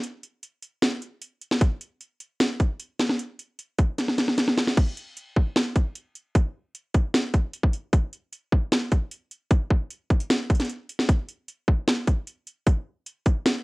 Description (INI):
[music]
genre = hip hop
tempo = 152 BPM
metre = 4/4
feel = half-time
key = none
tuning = none
[part]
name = trap drum kit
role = drums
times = 0.0-13.5 s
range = crash cymbal, hi-hat, kick drum, snare drum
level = -21 LUFS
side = equal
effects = overdrive
[sound]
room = light reverb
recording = worn, warbling old tape, cassette tape, warbly pitch drift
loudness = -22 LUFS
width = side -25 dB against mid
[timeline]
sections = 0.0-4.8 A section; 4.8-13.6 B section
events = drum fill 4.0-4.8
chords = none